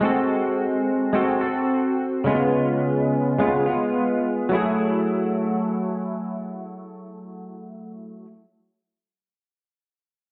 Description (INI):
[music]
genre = indie pop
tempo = 107 BPM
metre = 4/4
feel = swing 60% on 16ths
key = F# minor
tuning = A4 = 441 Hz
[part]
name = direct-recorded clean electric guitar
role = accompaniment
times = 0.0-8.3 s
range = C#3 to A4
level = -24 LUFS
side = equal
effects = analog chorus, vibrato effect
[sound]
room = wet studio ambience, RT60 0.5 s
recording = heard muffled through a wall, stone room reverb, EQ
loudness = -23 LUFS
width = mono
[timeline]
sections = 0.0-4.5 A section; 4.5-6.8 B section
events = none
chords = 0.0 G#7b9; 2.3 C#7; 4.5 F#m9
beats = | 0.02 0.58 1.14 1.70 | 2.27 2.83 3.39 3.95 | 4.51 5.07 5.63 6.20